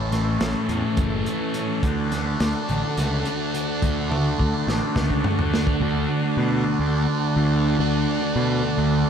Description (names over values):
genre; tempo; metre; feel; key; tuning
psychedelic rock; 211 BPM (eighths); 7/8; straight; unclear; A4 = 441 Hz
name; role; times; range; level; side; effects
combo organ; sustained chords; 0.0-9.1 s; C#4 to A4; -32 LUFS; right 6 dB; none
thick fuzz guitar; riff; 0.0-9.1 s; A2 to D4; -23 LUFS; equal; distortion, phaser, analog delay
fuzz picked electric bass; bass; 0.0-9.0 s; F#1 to B2; -25 LUFS; equal; overdrive
crunchy breakbeat drum kit; drums; 0.1-5.8 s; hi-hat, kick drum, snare drum, toms; -26 LUFS; equal; none
room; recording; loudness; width
light reverb, small room ambience; echo-heavy mix; -20 LUFS; side -8 dB against mid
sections
0.0-5.8 A section; 5.8-9.1 B section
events
drum fill 4.1-5.8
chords
0.0 A; 1.8 D